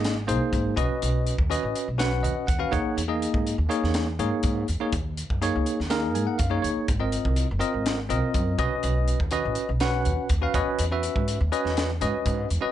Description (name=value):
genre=electric jazz fusion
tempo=123 BPM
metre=4/4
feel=straight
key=unclear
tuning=A4 = 440 Hz
part: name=bell-like tine electric piano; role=accompaniment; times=0.0-12.7 s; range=Bb3 to Ab5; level=-26 LUFS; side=equal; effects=medium stereo tremolo
part: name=upright bass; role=bass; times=0.0-12.7 s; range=Gb1 to G#2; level=-27 LUFS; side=equal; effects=none
part: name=crisp fusion drum kit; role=drums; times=0.0-12.6 s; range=hi-hat, kick drum, snare drum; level=-29 LUFS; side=equal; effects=none
room=light reverb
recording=nothing above 10.5 kHz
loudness=-23 LUFS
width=side -12 dB against mid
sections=0.0-12.7 A section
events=tine electric piano fill 2.0-3.0, 5.9-6.9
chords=0.0 Ab; 0.8 B; 2.7 Emaj7; 4.9 Ebm7; 6.9 Ab7; 8.6 B; 10.6 Emaj9